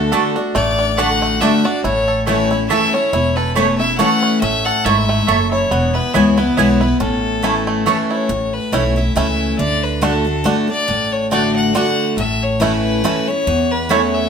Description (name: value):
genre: bluegrass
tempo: 139 BPM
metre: 3/4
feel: swing 55% on 8ths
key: A major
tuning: A4 = 439 Hz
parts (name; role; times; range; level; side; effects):
- bluegrass banjo; melody; 0.0-14.0 s; A3 to A4; -23 LUFS; right 4 dB; none
- bright fiddle; melody; 0.0-14.3 s; A4 to F#5; -20 LUFS; left 2 dB; none
- picked steel-string acoustic guitar; accompaniment; 0.0-14.3 s; E2 to F#4; -18 LUFS; left 1 dB; none
- upright bass; bass; 0.0-14.3 s; E1 to E2; -23 LUFS; right 1 dB; none
- mandolin; stabs; 0.1-8.0, 13.9-14.0 s; A3 to A5; -19 LUFS; right 7 dB; none
room: wet studio reverb, RT60 0.9 s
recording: band playing live in one room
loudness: -14 LUFS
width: side -7 dB against mid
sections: 0.0-8.3 A section; 8.3-14.3 A section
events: none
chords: 0.0 D; 1.8 A; 5.7 E; 7.0 A; 9.6 D; 12.2 A